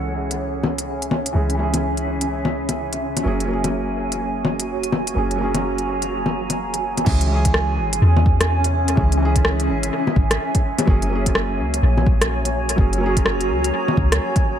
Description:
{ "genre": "future garage", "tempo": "126 BPM", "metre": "4/4", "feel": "swing 62% on 16ths", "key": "C# minor", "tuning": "A4 = 440 Hz", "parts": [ { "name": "felt-muted upright piano", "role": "accompaniment", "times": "0.0-14.6 s", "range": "E3 to G#4", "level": "-25 LUFS", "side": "right 1 dB", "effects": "vintage 12-bit sampler grit, sidechain pumping, low-pass filter, dub echo" }, { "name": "granular cloud pad", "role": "sustained chords", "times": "0.0-14.6 s", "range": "C#4 to A#5", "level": "-24 LUFS", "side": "right 2 dB", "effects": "built-in reverb, sidechain pumping" }, { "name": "soft 808-style bass", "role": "bass", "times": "0.0-14.2 s", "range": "F#1 to E2", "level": "-22 LUFS", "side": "equal", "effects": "none" }, { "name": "organic electronic drum kit", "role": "drums", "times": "0.3-14.4 s", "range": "bongos, crash cymbal, hi-hat, rim click", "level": "-23 LUFS", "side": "left 2 dB", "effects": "dub echo" }, { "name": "electronic kick drum", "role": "drums", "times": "7.1-14.4 s", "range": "none", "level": "-19 LUFS", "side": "equal", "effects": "overdrive" } ], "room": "light reverb", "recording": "echo-heavy mix", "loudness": "-17 LUFS", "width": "side -9 dB against mid", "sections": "0.0-7.1 A section; 7.1-14.6 B section", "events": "none", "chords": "0.0 C#m; 3.3 F#add9; 7.1 C#m; 10.9 F#add9", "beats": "0.40 0.88 | 1.35 1.83 2.31 2.78 | 3.26 3.73 4.21 4.69 | 5.16 5.64 6.12 6.59 | 7.07 7.54 8.02 8.50 | 8.97 9.45 9.92 10.40 | 10.88 11.35 11.83 12.30 | 12.78 13.26 13.73 14.21" }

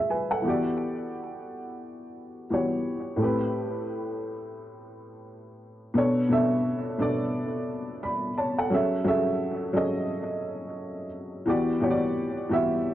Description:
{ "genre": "hip hop", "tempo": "87 BPM", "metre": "4/4", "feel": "swing 60% on 16ths", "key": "B minor", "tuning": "A4 = 440 Hz", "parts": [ { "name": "dark upright piano", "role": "solo", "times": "0.0-12.9 s", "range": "A2 to B5", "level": "-25 LUFS", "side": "equal", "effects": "cassette tape, low-pass filter, tape echo" } ], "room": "wet studio reverb, RT60 0.6 s", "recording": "dark, warm production", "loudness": "-25 LUFS", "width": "side -13 dB against mid", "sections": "0.0-6.0 A section; 6.0-12.9 B section", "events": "none", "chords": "0.4 Em9; 3.2 Am9; 6.0 Bm9; 8.7 F#m9; 11.5 Em9", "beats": "| 0.44 1.13 1.82 2.51 | 3.20 3.89 4.58 5.27 | 5.96 6.65 7.34 8.03 | 8.72 9.41 10.10 10.79 | 11.48 12.17 12.86" }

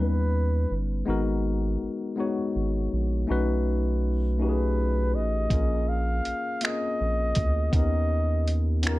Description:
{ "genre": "slow six-eight R&B", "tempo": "54 BPM (dotted quarters)", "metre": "6/8", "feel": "straight", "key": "unclear", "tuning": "A4 = 442 Hz", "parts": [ { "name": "breathy flugelhorn", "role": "melody", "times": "0.0-0.8, 4.4-9.0 s", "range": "A#4 to E#5", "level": "-31 LUFS", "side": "equal", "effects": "slapback echo, plate reverb" }, { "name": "tine electric piano", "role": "accompaniment", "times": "0.0-9.0 s", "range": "G3 to C#5", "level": "-29 LUFS", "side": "left 3 dB", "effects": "plate reverb" }, { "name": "round analog bass", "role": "bass", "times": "0.0-9.0 s", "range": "G1 to D#2", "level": "-26 LUFS", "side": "right 1 dB", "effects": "none" }, { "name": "dusty soul sampler-style drum kit", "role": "drums", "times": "5.5-9.0 s", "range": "finger snaps, hi-hat, kick drum", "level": "-26 LUFS", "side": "right 1 dB", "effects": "none" } ], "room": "light reverb", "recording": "dark, warm production", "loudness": "-24 LUFS", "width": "side -18 dB against mid", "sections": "0.0-9.0 A section", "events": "none", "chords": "0.0 D#7b13; 1.1 G#m9; 3.3 B9; 5.5 A#m7; 7.7 D#7b13", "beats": "| 1.06 2.17 | 3.28 4.39 | 5.50 6.62 | 7.73 8.84" }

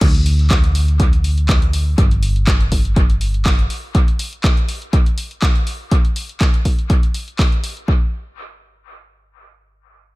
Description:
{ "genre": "piano house", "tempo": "122 BPM", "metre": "4/4", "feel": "swing 54% on 16ths", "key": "unclear", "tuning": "A4 = 440 Hz", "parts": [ { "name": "solid FM bass", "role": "bass", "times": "0.0-3.7 s", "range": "G1 to D2", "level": "-16 LUFS", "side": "equal", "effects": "sidechain pumping" }, { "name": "electronic kick drum", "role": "drums", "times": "0.0-8.0 s", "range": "none", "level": "-14 LUFS", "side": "equal", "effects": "none" }, { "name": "punchy analog drum machine", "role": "drums", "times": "0.0-7.9 s", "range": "crash cymbal, handclaps, hi-hat", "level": "-24 LUFS", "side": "equal", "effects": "dub echo" } ], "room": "little or no reverb", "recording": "echo-heavy mix, faint mains hum", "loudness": "-14 LUFS", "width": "side -21 dB against mid", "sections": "0.0-7.9 A section; 7.9-10.2 B section", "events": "none", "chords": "none", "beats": "| 0.01 0.50 1.00 1.49 | 1.98 2.47 2.96 3.46 | 3.95 4.44 4.93 5.42 | 5.91 6.41 6.90 7.39 | 7.88" }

